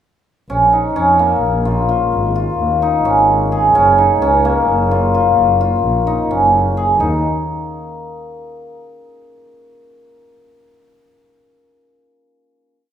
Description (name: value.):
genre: contemporary instrumental, chamber music in an uneven meter.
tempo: 259 BPM (eighths).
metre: 7/8.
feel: straight.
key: Eb minor.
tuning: A4 = 443 Hz.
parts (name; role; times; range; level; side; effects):
cimbalom; arpeggios; 0.5-8.7 s; Bb3 to Ab4; -13 LUFS; equal; none.
muted double bass; bass; 0.5-7.2 s; Gb1 to F2; -20 LUFS; equal; none.
room: wet recital hall reverb, RT60 1.4 s.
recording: none.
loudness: -12 LUFS.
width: side -9 dB against mid.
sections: 0.5-7.0 A section; 7.0-8.6 final note.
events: none.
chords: 0.5 Bbm; 2.1 Absus4; 3.7 Gbmaj7; 7.0 N.C..